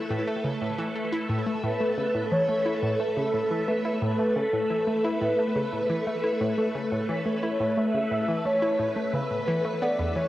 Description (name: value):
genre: ambient, sequencer-driven space music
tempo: 88 BPM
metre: 4/4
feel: straight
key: unclear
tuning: A4 = 440 Hz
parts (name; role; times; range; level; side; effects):
- phased string machine; sustained chords; 0.0-10.3 s; E3 to E5; -29 LUFS; equal; ensemble chorus, phaser, cassette tape
- analog pluck; riff; 0.0-10.2 s; E2 to E4; -29 LUFS; equal; chorus, cassette tape, tape echo
- breathy flute-like synth lead; melody; 1.6-10.3 s; A4 to E5; -27 LUFS; equal; ensemble chorus, cassette tape, tape echo
room: wet spring reverb, RT60 1.3 s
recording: home recording on cassette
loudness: -24 LUFS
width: side -15 dB against mid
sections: 0.0-10.3 A section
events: none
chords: 0.0 Aadd9